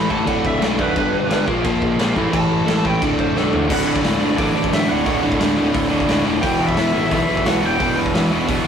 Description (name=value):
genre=punk rock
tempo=176 BPM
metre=4/4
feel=straight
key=unclear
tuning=A4 = 440 Hz
part: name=smooth overdriven lead guitar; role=melody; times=0.0-8.0 s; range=A4 to A5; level=-23 LUFS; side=right 1 dB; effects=none
part: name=overdriven electric guitar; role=riff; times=0.0-8.7 s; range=D2 to Bb3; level=-19 LUFS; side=equal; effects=none
part: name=overdriven semi-hollow guitar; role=riff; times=0.0-8.7 s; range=D2 to Bb3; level=-26 LUFS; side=equal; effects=none
part: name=modern bright picked electric bass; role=bass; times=0.0-8.6 s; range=D1 to D2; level=-25 LUFS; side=equal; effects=none
part: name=raw garage drum kit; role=drums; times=0.1-8.6 s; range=crash cymbal, hi-hat, kick drum, snare drum, toms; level=-22 LUFS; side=equal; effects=none
room=moderate studio reverb, RT60 0.5 s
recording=rough rehearsal-room recording, warm saturation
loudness=-16 LUFS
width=side -7 dB against mid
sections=0.0-3.7 A section; 3.7-8.7 B section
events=lead electric guitar solo 0.0-3.7; drum fill 3.4-3.7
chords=0.3 D5; 1.0 G; 1.5 Bb5; 2.2 A5; 3.0 D5; 6.4 Em